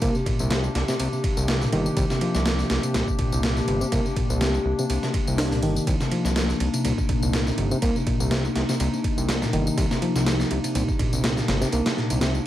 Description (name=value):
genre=breakbeat, breaks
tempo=123 BPM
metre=4/4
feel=swing 55% on 16ths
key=C minor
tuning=A4 = 440 Hz
part: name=warbly tape-like pad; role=sustained chords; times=0.0-12.5 s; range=C3 to G4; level=-28 LUFS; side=left 2 dB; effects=chorus, built-in reverb, vintage 12-bit sampler grit, sidechain pumping
part: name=reed electric piano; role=riff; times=0.0-12.3 s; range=Bb2 to Bb3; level=-27 LUFS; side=equal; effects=digital delay
part: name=fat analog bass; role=bass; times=0.0-12.4 s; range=G1 to C2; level=-26 LUFS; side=equal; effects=none
part: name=breakbeat sampler-style drum kit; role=drums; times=0.0-12.3 s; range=kick drum, ride cymbal, snare drum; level=-26 LUFS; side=equal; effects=overdrive
part: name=tambourine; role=drums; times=0.0-12.4 s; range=none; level=-36 LUFS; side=left 3 dB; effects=overdrive
room=moderate studio reverb, RT60 0.6 s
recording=vinyl crackle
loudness=-21 LUFS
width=side -13 dB against mid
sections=0.0-12.5 A section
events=none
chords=0.0 Cm9